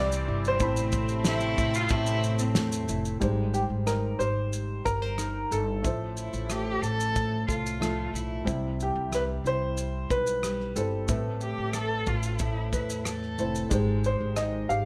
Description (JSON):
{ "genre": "acoustic pop", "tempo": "92 BPM", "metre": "4/4", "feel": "straight", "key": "unclear", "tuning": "A4 = 440 Hz", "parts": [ { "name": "warm upright piano", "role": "melody", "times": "0.0-14.9 s", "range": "G4 to F5", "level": "-34 LUFS", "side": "equal", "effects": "none" }, { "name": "felt-muted upright piano", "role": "accompaniment", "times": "0.0-14.9 s", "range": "F3 to B5", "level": "-38 LUFS", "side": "equal", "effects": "none" }, { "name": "nylon-string guitar", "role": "accompaniment", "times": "0.0-14.9 s", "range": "A2 to C5", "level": "-36 LUFS", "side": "equal", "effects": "none" }, { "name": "sweeping resonant pad", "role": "sustained chords", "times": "0.0-3.2 s", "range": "C3 to C4", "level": "-39 LUFS", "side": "equal", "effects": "chorus" }, { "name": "upright bass", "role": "bass", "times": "0.0-14.9 s", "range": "F1 to E2", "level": "-34 LUFS", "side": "equal", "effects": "none" }, { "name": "loose indie drum kit", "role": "drums", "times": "0.1-14.9 s", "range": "kick drum, rim click, shaker, snare drum", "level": "-34 LUFS", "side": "equal", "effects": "none" }, { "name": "warm cello", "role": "second line", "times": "1.3-13.9 s", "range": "C4 to A4", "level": "-35 LUFS", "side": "equal", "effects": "none" } ], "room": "light reverb", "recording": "none", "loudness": "-28 LUFS", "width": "mono", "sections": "0.0-3.2 A section; 3.2-14.9 B section", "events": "none", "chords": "0.0 C; 0.6 Amadd9; 3.2 Abmaj7; 5.8 Fmaj7/A; 8.5 C; 11.1 Amadd9; 13.7 Abmaj7", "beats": "| 0.61 1.26 1.92 2.57 | 3.23 3.88 4.53 5.19 | 5.84 6.50 7.15 7.81 | 8.47 9.12 9.78 10.43 | 11.09 11.75 12.40 13.06 | 13.71 14.37" }